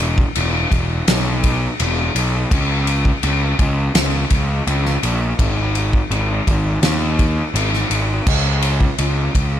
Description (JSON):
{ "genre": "rock, shoegaze and dream pop", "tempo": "83 BPM", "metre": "4/4", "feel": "straight", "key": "unclear", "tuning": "A4 = 440 Hz", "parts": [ { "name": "fuzz picked electric bass", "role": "bass", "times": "0.0-9.6 s", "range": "E1 to Eb2", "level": "-18 LUFS", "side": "equal", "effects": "overdrive" }, { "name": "loose indie drum kit", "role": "drums", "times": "0.0-9.5 s", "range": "crash cymbal, kick drum, ride cymbal, snare drum", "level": "-18 LUFS", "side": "equal", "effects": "none" } ], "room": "little or no reverb", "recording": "none", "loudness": "-15 LUFS", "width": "side -11 dB against mid", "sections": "0.0-9.6 A section", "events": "none", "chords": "none" }